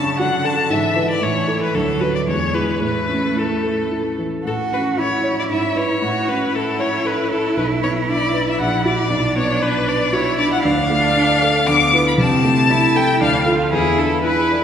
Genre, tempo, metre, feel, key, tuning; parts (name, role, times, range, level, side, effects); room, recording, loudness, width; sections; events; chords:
quick classical-period movement for piano trio; 116 BPM; 3/4; rubato; A major, A minor from 10.7 s; A4 = 439 Hz
rich violin; melody; 0.0-14.6 s; G#4 to D6; -19 LUFS; left 3 dB
rich cello; second line; 0.0-14.6 s; C#3 to F#4; -22 LUFS; right 3 dB
dark concert grand piano; accompaniment; 0.0-14.6 s; A#1 to D5; -20 LUFS; equal
wet church reverb, RT60 3.6 s; recorded in a church or concert hall; -15 LUFS; side -8 dB against mid
0.0-4.5 A section; 4.5-14.6 B section
0.0 D/F#; 0.7 E/G#; 1.2 A; 1.7 Bm/D; 2.3 E; 2.8 A; 5.5 E/G#; 6.0 A; 7.6 Bm; 8.6 F#7/A#; 9.1 Bm; 10.7 Dm; 11.7 E5/D; 12.2 Am/C; 13.2 Dm; 13.7 E7